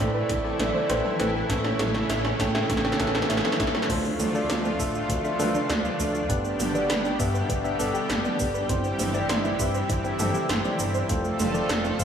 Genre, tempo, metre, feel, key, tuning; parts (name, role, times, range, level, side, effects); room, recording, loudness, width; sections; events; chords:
synthwave; 100 BPM; 4/4; straight; A4 = 440 Hz
lush unison pad; sustained chords; 0.0-12.0 s; A2 to A4; -30 LUFS; right 1 dB; chorus, sidechain pumping
soft round pluck; arpeggios; 0.0-12.0 s; A3 to C6; -33 LUFS; right 3 dB; chorus, tape echo
bright tine electric piano; stabs; 0.0-12.0 s; B3 to G5; -28 LUFS; left 1 dB; tape echo
chorused synth bass; bass; 0.0-12.0 s; D1 to A2; -30 LUFS; equal
electronic kick drum; drums; 0.0-12.0 s; -30 LUFS; equal
80s electronic pad drums; drums; 0.3-12.0 s; crash cymbal, hi-hat, shaker, snare drum, toms; -28 LUFS; right 1 dB; gated reverb on snare and toms, overdrive
wet lush hall reverb, RT60 1.9 s, digital ambience; dreamy mix soaked in reverb, small room ambience; -23 LUFS; side -8 dB against mid
0.0-3.9 A section; 3.9-12.0 B section
drum fill 0.0-3.9
0.0 Amadd9; 1.5 A; 3.9 Dm7; 6.3 G; 8.7 C/G; 11.1 F